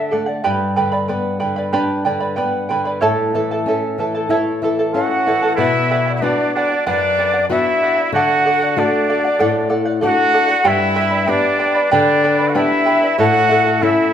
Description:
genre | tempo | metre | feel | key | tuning
andean folk | 94 BPM | 4/4 | straight | B minor | A4 = 440 Hz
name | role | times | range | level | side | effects
breathy bright quena | melody | 0.0-0.1, 4.9-14.1 s | D5 to F#5 | -18 LUFS | left 3 dB | none
charango | accompaniment | 0.0-14.1 s | E4 to B5 | -19 LUFS | right 3 dB | none
flamenco guitar | accompaniment | 0.0-14.1 s | F#2 to G4 | -20 LUFS | left 3 dB | none
trumpet with straight mute | second line | 4.9-14.1 s | D4 to F#4 | -19 LUFS | right 4 dB | none
room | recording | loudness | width
wet recital hall reverb, RT60 1.4 s | recorded in a church or concert hall | -14 LUFS | side -9 dB against mid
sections
0.0-5.6 A section; 5.6-14.1 B section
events
none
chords
0.4 G; 3.0 A; 5.6 Bm; 8.1 D; 10.7 G; 13.2 A

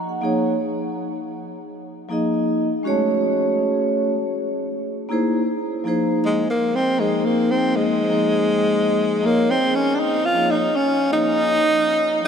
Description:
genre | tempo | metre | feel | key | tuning
hip hop | 80 BPM | 4/4 | swing 63% on 16ths | Db major | A4 = 440 Hz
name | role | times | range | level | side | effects
vibraphone with medium mallets | accompaniment | 0.0-12.3 s | F3 to Gb5 | -21 LUFS | equal | none
breathy tenor saxophone | melody | 6.3-12.3 s | Ab3 to F4 | -18 LUFS | equal | diffuse ambient delay
room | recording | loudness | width
wet huge ambient reverb, RT60 4.9 s | dreamy mix soaked in reverb | -18 LUFS | side -7 dB against mid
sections
0.0-12.2 A section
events
none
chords
0.2 Db69 (rootless); 2.9 Gbmadd9; 5.5 Fmadd11; 9.2 Dbadd9

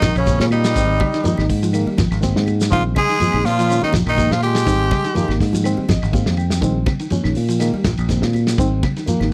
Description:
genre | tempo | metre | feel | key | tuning
afrobeat | 123 BPM | 4/4 | swing 54% on 16ths | Bb dorian | A4 = 440 Hz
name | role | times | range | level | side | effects
raspy tenor saxophone | melody | 0.0-5.4 s | Db4 to Ab4 | -22 LUFS | equal | none
trombone with metal mute | second line | 0.0-5.4 s | Db3 to Ab3 | -29 LUFS | equal | none
reed electric piano | accompaniment | 0.0-9.3 s | Eb3 to G5 | -28 LUFS | equal | overdrive, fast tremolo
mellow electric guitar | arpeggios | 0.0-9.3 s | Db3 to G3 | -26 LUFS | equal | none
fingered electric bass | bass | 0.0-9.3 s | Ab1 to Bb2 | -21 LUFS | equal | none
warm soul drum kit | drums | 0.0-9.3 s | hi-hat, kick drum, ride cymbal, snare drum | -25 LUFS | equal | none
congas | percussion | 0.0-9.3 s | none | -30 LUFS | equal | none
shekere | percussion | 0.0-9.2 s | none | -30 LUFS | equal | none
claves | percussion | 0.2-9.3 s | none | -41 LUFS | equal | none
room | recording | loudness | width
studio ambience | dry, close 1970s-style studio recording | -18 LUFS | mono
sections
0.0-9.3 A section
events
reed electric piano fill 5.7-6.6; drum fill 6.1-6.6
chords
0.0 Bbm7; 0.8 Abmaj7; 2.7 Bbm7; 4.7 Abmaj7; 6.6 Bbm7; 8.6 Ab

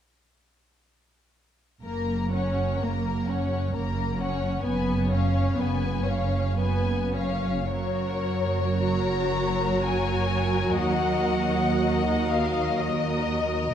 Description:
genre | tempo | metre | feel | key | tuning
classical, slow romantic movement for string orchestra | 50-67 BPM | 3/4 | rubato | F# major | A4 = 439 Hz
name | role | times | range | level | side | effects
warm symphonic violin section | melody | 1.8-13.7 s | C#5 to A#5 | -32 LUFS | left 5 dB | none
warm symphonic violin section | second line | 1.8-13.7 s | A#4 to D#5 | -31 LUFS | left 3 dB | none
rich symphonic viola section | accompaniment | 1.8-13.7 s | F#3 to F#4 | -29 LUFS | right 1 dB | none
warm studio double bass section | bass | 1.8-13.7 s | F#1 to D#2 | -29 LUFS | right 2 dB | none
warm symphonic cello section | bass | 1.8-13.7 s | D#2 to F#2 | -30 LUFS | right 1 dB | none
room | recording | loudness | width
wet scoring stage reverb, RT60 2.1 s | dark, warm production | -23 LUFS | side -9 dB against mid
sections
1.8-7.7 A section; 7.7-13.7 B section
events
none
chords
1.8 F#; 4.7 C#7/F#; 7.7 F#; 10.8 D#m

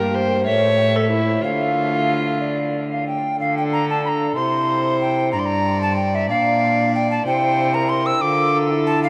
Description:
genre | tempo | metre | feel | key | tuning
classical, renaissance-style consort dance | 62 BPM (dotted quarters) | 6/8 | straight | D minor | A4 = 440 Hz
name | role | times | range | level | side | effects
alto recorder | melody | 0.0-9.1 s | D5 to E6 | -23 LUFS | equal | none
warm viola | second line | 0.0-9.1 s | E4 to D5 | -25 LUFS | equal | none
warm trombone | accompaniment | 0.0-9.1 s | A3 to F4 | -28 LUFS | equal | none
rich cello | bass | 0.0-9.1 s | G2 to D3 | -26 LUFS | equal | none
room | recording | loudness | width
wet cathedral reverb, RT60 6.4 s | in a vast, echoing space, vinyl crackle | -19 LUFS | mono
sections
0.0-3.4 A section; 3.4-9.1 A section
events
none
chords
0.5 A; 1.4 Dm; 3.4 D5; 4.4 C; 5.3 G5; 6.3 Bb; 7.3 C; 8.2 Dm

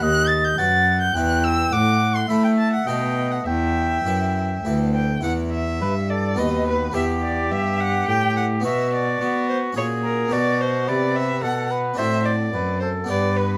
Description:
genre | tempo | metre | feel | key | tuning
classical, baroque-style sonata movement with continuo | 106 BPM | 3/4 | rubato | E minor | A4 = 440 Hz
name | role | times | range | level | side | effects
warm oboe | melody | 0.0-13.6 s | F#4 to G5 | -27 LUFS | equal | none
rich violin | second line | 0.0-13.6 s | A#4 to A6 | -26 LUFS | equal | none
harpsichord | accompaniment | 0.0-13.6 s | D2 to C5 | -29 LUFS | equal | none
rich cello | bass | 0.0-13.6 s | D2 to B3 | -26 LUFS | equal | none
room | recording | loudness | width
light reverb | close, detailed microphones | -21 LUFS | mono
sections
0.0-5.2 A section; 5.2-13.6 B section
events
none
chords
0.0 B/D#; 1.2 Em; 1.7 Am; 2.9 B7; 3.5 Em; 6.4 B/D#; 7.0 Em; 8.6 Bm; 9.8 F#/A#; 10.3 Bm; 12.0 D7/A

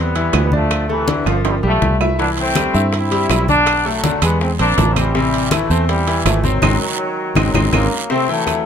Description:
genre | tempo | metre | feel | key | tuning
latin, salsa | 162 BPM | 4/4 | straight | unclear | A4 = 440 Hz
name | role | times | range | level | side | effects
brilliant trombone section | melody | 0.0-8.7 s | C3 to E4 | -19 LUFS | left 1 dB | slapback echo
bright grand piano | accompaniment | 0.0-8.6 s | C3 to G5 | -20 LUFS | left 2 dB | none
fingered electric bass | bass | 0.0-7.9 s | G1 to G2 | -18 LUFS | right 1 dB | none
bongos | percussion | 0.2-8.7 s | none | -26 LUFS | left 6 dB | none
congas | percussion | 0.2-8.7 s | none | -24 LUFS | left 3 dB | none
timbales | percussion | 0.2-8.7 s | none | -25 LUFS | right 9 dB | none
claves | percussion | 0.3-8.7 s | none | -24 LUFS | right 8 dB | none
guiro | percussion | 2.2-8.7 s | none | -29 LUFS | right 8 dB | none
room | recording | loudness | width
little or no reverb | close, detailed microphones | -14 LUFS | side -8 dB against mid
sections
0.0-8.1 A section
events
drum fill 1.3-2.2, 6.6-8.1; band accent 6.6-8.1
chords
0.0 Am9; 0.7 Dm7; 1.5 G9; 2.2 Cmaj9; 3.7 Bm7; 4.4 Eaug7; 5.1 Am7; 6.6 Ab9; 8.1 Am7

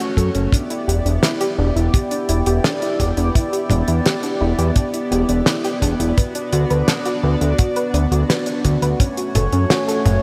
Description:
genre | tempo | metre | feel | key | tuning
synthwave | 85 BPM | 4/4 | straight | E dorian | A4 = 439 Hz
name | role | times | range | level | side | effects
chorused pulse-width pad | sustained chords | 0.0-10.2 s | A3 to D5 | -25 LUFS | equal | sidechain pumping
soft round pluck | arpeggios | 0.0-10.2 s | C#4 to B4 | -26 LUFS | equal | chorus, cassette tape, digital delay
damped 70s drum kit | drums | 0.0-10.2 s | hi-hat, snare drum, toms | -24 LUFS | equal | none
fat analog bass | bass | 0.2-10.2 s | E1 to F#2 | -20 LUFS | equal | tube saturation
kick drum | drums | 0.2-9.1 s | none | -19 LUFS | equal | none
room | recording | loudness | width
moderate lush hall reverb, RT60 2.8 s | bright 1980s-style digital production | -18 LUFS | mono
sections
0.0-10.2 A section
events
none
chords
0.0 F#m; 0.5 Em7; 6.2 Bm/D; 9.0 F#m

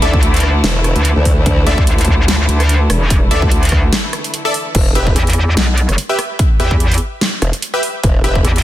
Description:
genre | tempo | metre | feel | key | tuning
heavy wobble dubstep | 146 BPM | 4/4 | swing 55% on 16ths, half-time | unclear | A4 = 440 Hz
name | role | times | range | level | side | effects
rich studio string section | sustained chords | 0.0-4.7 s | D3 to E4 | -22 LUFS | equal | sidechain pumping
supersaw stab | stabs | 0.0-8.3 s | G4 to E5 | -20 LUFS | equal | ping-pong delay
metallic wobble bass | bass | 0.0-8.6 s | E1 to E2 | -13 LUFS | equal | chorus, overdrive
dubstep drum kit | drums | 0.0-8.6 s | crash cymbal, hi-hat, rim click, snare drum | -20 LUFS | equal | small room ambience
electronic kick drum | drums | 0.1-8.4 s | none | -14 LUFS | equal | small room ambience
formant-sweep wobble bass | bass | 0.6-1.7, 4.7-8.4 s | E1 to D2 | -15 LUFS | equal | chorus, overdrive
room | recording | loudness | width
little or no reverb | dense, heavily limited modern master | -11 LUFS | side -14 dB against mid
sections
0.0-4.7 A section; 4.7-8.6 A section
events
drop 0.0-4.7, 4.7-8.6; break 3.9-4.7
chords
0.0 Dsus2; 4.7 Em

